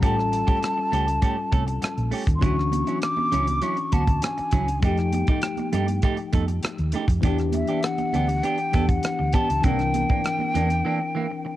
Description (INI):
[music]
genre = lush 1970s-style soul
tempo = 100 BPM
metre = 4/4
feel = straight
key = unclear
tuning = A4 = 439 Hz
[part]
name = breathy mellow silver concert flute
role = melody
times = 0.0-11.6 s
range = E5 to D6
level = -26 LUFS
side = equal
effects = cassette tape, analog delay
[part]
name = bell-like tine electric piano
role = accompaniment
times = 0.0-11.6 s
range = E3 to Bb4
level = -28 LUFS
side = left 6 dB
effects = cassette tape
[part]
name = electric guitar at the edge of break-up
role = riff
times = 0.0-11.5 s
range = E3 to A4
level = -30 LUFS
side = right 6 dB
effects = cassette tape
[part]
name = hollow-body short-scale fingered electric bass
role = bass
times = 0.0-10.8 s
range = A1 to G2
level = -25 LUFS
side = equal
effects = tube saturation
[part]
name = tight funk drum kit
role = drums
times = 0.0-10.8 s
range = hi-hat, kick drum, rim click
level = -24 LUFS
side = equal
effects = none
[part]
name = congas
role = percussion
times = 2.4-10.8 s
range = none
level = -33 LUFS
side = right 7 dB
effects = none
[sound]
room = light reverb, small room ambience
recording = home recording on cassette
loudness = -21 LUFS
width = side -14 dB against mid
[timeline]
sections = 0.0-11.6 A section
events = break 10.8-11.6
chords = 0.0 A7b13; 2.4 Dmaj9; 4.8 F9; 7.2 Em7; 9.6 C9